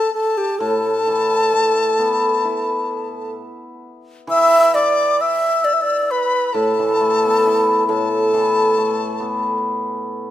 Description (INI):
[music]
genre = chinese traditional, Chinese chamber ensemble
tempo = 64-69 BPM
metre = 4/4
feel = rubato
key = unclear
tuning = A4 = 440 Hz
[part]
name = bright low xiao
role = melody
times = 0.0-9.6 s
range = G4 to E5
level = -17 LUFS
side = right 1 dB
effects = none
[part]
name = mellow dizi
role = second line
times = 0.0-9.6 s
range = A5 to E6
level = -21 LUFS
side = left 4 dB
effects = none
[part]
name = hammered dulcimer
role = accompaniment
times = 0.6-10.3 s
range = A2 to E4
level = -22 LUFS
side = left 1 dB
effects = none
[sound]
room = moderate recital hall reverb, RT60 1.6 s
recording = none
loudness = -15 LUFS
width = side -12 dB against mid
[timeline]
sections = 0.0-4.3 A section; 4.3-10.3 B section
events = none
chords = none